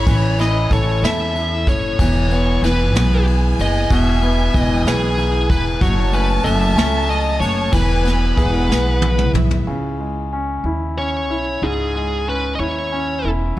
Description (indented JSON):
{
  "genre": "six-eight pop ballad",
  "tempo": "62 BPM (dotted quarters)",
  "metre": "6/8",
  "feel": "straight",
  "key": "unclear",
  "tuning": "A4 = 439 Hz",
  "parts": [
    { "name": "high-gain lead guitar", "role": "melody", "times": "0.0-13.3 s", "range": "G#4 to E5", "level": "-22 LUFS", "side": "equal", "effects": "distortion" },
    { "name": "rich studio violin section", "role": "second line", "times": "0.0-9.7 s", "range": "E5 to B5", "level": "-27 LUFS", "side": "equal", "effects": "none" },
    { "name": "bright concert grand piano", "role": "accompaniment", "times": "0.0-13.6 s", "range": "G#2 to A4", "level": "-24 LUFS", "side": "equal", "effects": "none" },
    { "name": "fingerpicked steel-string acoustic guitar", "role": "arpeggios", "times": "0.0-10.2 s", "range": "F#3 to A4", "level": "-26 LUFS", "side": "left 3 dB", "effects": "none" },
    { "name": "upright bass", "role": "bass", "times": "0.0-13.6 s", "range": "E1 to E2", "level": "-19 LUFS", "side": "equal", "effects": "none" },
    { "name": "vintage brush drum kit", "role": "drums", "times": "0.1-9.7 s", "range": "kick drum, ride cymbal, snare drum, toms", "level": "-22 LUFS", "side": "equal", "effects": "none" }
  ],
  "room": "light reverb, small room ambience",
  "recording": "dark, warm production",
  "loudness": "-15 LUFS",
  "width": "side -15 dB against mid",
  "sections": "0.0-9.7 A section; 9.7-13.6 B section",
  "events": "drum fill 8.7-9.7",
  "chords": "0.0 A; 2.0 E; 5.8 F#m; 7.7 Eadd9; 9.7 C#madd9",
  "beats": "| 0.06 1.02 | 1.99 2.95 | 3.90 4.86 | 5.81 6.76 | 7.73 8.70 | 9.67 10.65 | 11.63 12.60 | 13.57"
}